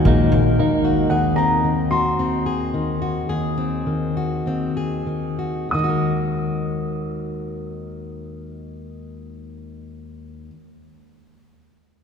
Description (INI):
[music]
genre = acoustic folk duo or small band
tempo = 91-114 BPM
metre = 4/4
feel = straight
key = Eb minor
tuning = A4 = 440 Hz
[part]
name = fingerpicked plugged-in steel-string acoustic guitar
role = accompaniment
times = 0.0-10.7 s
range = Eb2 to Bb4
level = -22 LUFS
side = left 2 dB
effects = none
[part]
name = electric guitar through a small old amp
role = arpeggios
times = 0.0-1.2 s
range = Gb3 to Eb4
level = -23 LUFS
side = equal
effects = tremolo
[part]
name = upright bass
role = bass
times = 0.1-1.1 s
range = Bb1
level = -21 LUFS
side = equal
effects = none
[part]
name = dark upright piano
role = melody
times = 1.1-10.5 s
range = Gb5 to Eb6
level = -25 LUFS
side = equal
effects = none
[sound]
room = wet cathedral reverb, RT60 4.3 s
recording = recorded in a church or concert hall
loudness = -19 LUFS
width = side -7 dB against mid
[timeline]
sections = 0.0-5.7 A section; 5.7-11.0 B section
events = slowing down 1.1-5.7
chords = 0.0 Ebm; 1.1 Ab7/Eb; 5.7 Ebm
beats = 0.06 0.59 | 1.12 1.65 2.18 2.73 | 3.28 3.86 4.45 5.07 | 5.71 6.37 7.03 7.68 | 8.34 9.00 9.66 10.31